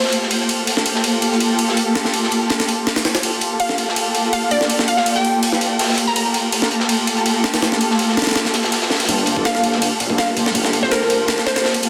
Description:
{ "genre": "drum and bass, jungle", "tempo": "164 BPM", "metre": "4/4", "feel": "straight", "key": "G minor", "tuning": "A4 = 440 Hz", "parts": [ { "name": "dark studio string section", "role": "sustained chords", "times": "0.0-11.9 s", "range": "Bb3 to A4", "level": "-22 LUFS", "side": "equal", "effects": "none" }, { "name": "crunchy breakbeat drum kit", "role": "drums", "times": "0.0-11.9 s", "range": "hi-hat, snare drum", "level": "-28 LUFS", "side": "equal", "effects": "high-pass filter on hats, high-pass filter on snare, high-pass filter on room" }, { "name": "jungle sampler-style drum kit", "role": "drums", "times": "0.1-11.9 s", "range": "kick drum, ride cymbal, snare drum", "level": "-22 LUFS", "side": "equal", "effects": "high-pass filter on cymbals, high-pass filter on kick, high-pass filter on snare, high-pass filter on room" }, { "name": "glassy wavetable pluck", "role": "melody", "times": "3.6-6.2, 9.5-11.6 s", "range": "Bb4 to Bb5", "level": "-24 LUFS", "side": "equal", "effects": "chorus, cassette tape, dub echo" }, { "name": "detuned saw bass", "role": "bass", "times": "9.1-11.4 s", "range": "G1 to Bb1", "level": "-27 LUFS", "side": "equal", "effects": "high-pass filter" } ], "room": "wet lush hall reverb, RT60 2.0 s", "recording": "dense, heavily limited modern master", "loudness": "-18 LUFS", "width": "mono", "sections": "0.0-9.1 A section; 9.1-11.9 B section", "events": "build-up 9.1-11.9", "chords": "0.0 Gm9" }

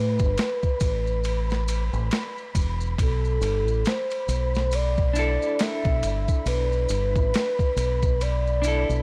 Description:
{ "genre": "trip hop", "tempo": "69 BPM", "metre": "4/4", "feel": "swing 59% on 16ths", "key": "unclear", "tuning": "A4 = 440 Hz", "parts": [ { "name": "pure breathy sine lead", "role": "melody", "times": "0.0-9.0 s", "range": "A4 to E5", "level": "-30 LUFS", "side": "equal", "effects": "chorus, tape echo" }, { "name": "deep dub fingered electric bass", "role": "bass", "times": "0.0-9.0 s", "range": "E1 to A2", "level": "-27 LUFS", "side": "equal", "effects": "none" }, { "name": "flickering grainy texture", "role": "texture", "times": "0.0-9.0 s", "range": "B5", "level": "-42 LUFS", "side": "equal", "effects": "built-in reverb" }, { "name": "boom bap sampler-style drum kit", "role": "drums", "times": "0.2-8.9 s", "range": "kick drum, ride cymbal, snare drum", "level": "-30 LUFS", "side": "equal", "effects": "studio reverb" }, { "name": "maracas", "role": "percussion", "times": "0.2-9.0 s", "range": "none", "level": "-44 LUFS", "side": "equal", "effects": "none" }, { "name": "clean electric guitar", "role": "accompaniment", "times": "5.1-9.0 s", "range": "D4 to A4", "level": "-33 LUFS", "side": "equal", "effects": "tremolo" } ], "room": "digital ambience", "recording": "dry, gritty hardware recording, vinyl crackle", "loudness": "-24 LUFS", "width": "mono", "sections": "0.0-9.0 A section", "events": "none", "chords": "0.0 Asus2; 3.0 E7sus4" }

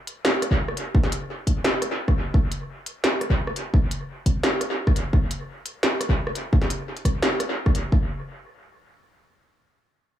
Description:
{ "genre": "drum and bass", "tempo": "172 BPM", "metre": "4/4", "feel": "half-time", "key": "none", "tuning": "none", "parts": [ { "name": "industrial drum kit", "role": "drums", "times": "0.1-7.8 s", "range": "hi-hat, rim click, snare drum", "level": "-25 LUFS", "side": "equal", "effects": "dub echo" }, { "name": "electronic kick drum", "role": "drums", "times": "0.5-8.0 s", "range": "none", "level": "-21 LUFS", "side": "equal", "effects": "none" } ], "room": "light reverb", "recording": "echo-heavy mix, small room ambience", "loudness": "-21 LUFS", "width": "side -11 dB against mid", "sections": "0.0-7.9 A section; 7.9-9.3 B section", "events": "none", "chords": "none" }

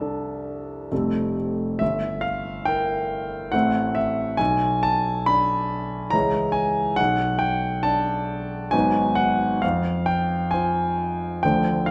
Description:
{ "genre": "classical, impressionist solo piano", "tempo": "68 BPM", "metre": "3/4", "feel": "rubato", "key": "unclear", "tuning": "A4 = 440 Hz", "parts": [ { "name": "warm concert grand piano", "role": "solo", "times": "0.0-11.9 s", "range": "F1 to B5", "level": "-23 LUFS", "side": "equal", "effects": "none" } ], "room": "wet recital hall reverb, RT60 1.7 s", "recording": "none", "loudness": "-23 LUFS", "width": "mono", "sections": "0.0-11.9 A section", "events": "none", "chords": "0.0 C69; 0.9 Fmaj9; 1.8 Gm6; 3.5 Am6; 4.4 Bm; 6.1 C#m6; 7.0 Bm7; 8.7 G#m7; 9.6 Fm" }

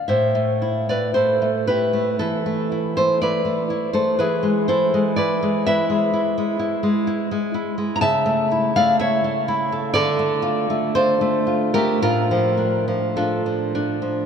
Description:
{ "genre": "romantic piece for solo classical guitar", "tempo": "52-64 BPM", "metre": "4/4", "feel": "rubato", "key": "A minor, D minor from 8.0 s", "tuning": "A4 = 440 Hz", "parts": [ { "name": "nylon-string guitar", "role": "solo", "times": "0.0-14.3 s", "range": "A2 to Bb5", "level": "-18 LUFS", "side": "equal", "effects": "none" } ], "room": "wet cathedral reverb, RT60 5.9 s", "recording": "in a vast, echoing space", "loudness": "-18 LUFS", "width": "side -7 dB against mid", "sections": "0.1-14.3 A section", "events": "none", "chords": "0.1 Am; 4.2 E; 8.0 A/C#; 10.0 Dm; 12.0 Dm/A" }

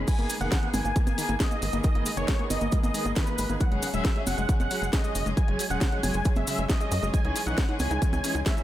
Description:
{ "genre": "uplifting trance", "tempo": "136 BPM", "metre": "4/4", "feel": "straight", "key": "G# minor", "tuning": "A4 = 440 Hz", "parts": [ { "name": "warm chamber string section", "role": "sustained chords", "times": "0.0-8.6 s", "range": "D#3 to G#4", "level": "-34 LUFS", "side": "right 1 dB", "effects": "sidechain pumping, low-pass filter" }, { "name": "wide unison pluck", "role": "arpeggios", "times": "0.0-8.6 s", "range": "C#3 to D#4", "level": "-34 LUFS", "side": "left 3 dB", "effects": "sidechain pumping, tape echo" }, { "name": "tight sequencer bass", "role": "bass", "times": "0.0-8.4 s", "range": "E1 to F#2", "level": "-30 LUFS", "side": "equal", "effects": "sidechain pumping" }, { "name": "big supersaw lead", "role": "melody", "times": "0.1-8.6 s", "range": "B4 to G#5", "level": "-32 LUFS", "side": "right 1 dB", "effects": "phaser, sidechain pumping, low-pass filter, analog delay" }, { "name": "electronic kick drum", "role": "drums", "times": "0.1-8.5 s", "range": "none", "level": "-25 LUFS", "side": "equal", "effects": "none" }, { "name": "house drum kit", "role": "drums", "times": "0.1-8.6 s", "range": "congas, crash cymbal, hi-hat, snare drum", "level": "-33 LUFS", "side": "right 1 dB", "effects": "none" }, { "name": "cabasa", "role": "percussion", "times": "0.1-8.6 s", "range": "none", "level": "-38 LUFS", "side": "left 1 dB", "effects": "none" } ], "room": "light reverb", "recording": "none", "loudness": "-24 LUFS", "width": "side -13 dB against mid", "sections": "0.0-8.6 A section", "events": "none", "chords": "0.1 G#madd9; 3.6 F#sus2; 7.1 C#m" }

